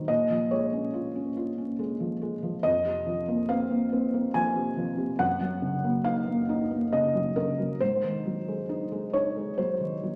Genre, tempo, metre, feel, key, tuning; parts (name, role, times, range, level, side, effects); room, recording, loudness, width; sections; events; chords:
neoclassical minimalist piano; 70 BPM; 3/4; rubato; Bb minor; A4 = 441 Hz
felt-muted upright piano; solo; 0.0-10.2 s; F2 to Ab5; -28 LUFS; equal
wet large studio reverb, RT60 1.2 s; vinyl crackle; -28 LUFS; mono
0.0-10.2 A section
0.1 Bbm7; 2.6 F7sus4; 5.2 Ebm7/Gb; 7.8 Ab7